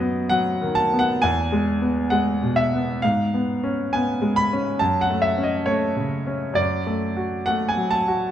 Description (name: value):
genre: classical, romantic character piece for solo piano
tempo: 67 BPM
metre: 4/4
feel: rubato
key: C# minor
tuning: A4 = 440 Hz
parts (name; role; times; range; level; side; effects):
- clear grand piano; solo; 0.0-8.3 s; E2 to B5; -20 LUFS; equal; none
room: wet recital hall reverb, RT60 1.4 s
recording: none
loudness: -19 LUFS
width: side -10 dB against mid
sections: 0.0-8.3 A section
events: none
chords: 0.0 B/F#; 1.2 E; 3.0 C#7/G#; 4.8 F#m; 6.6 D/F#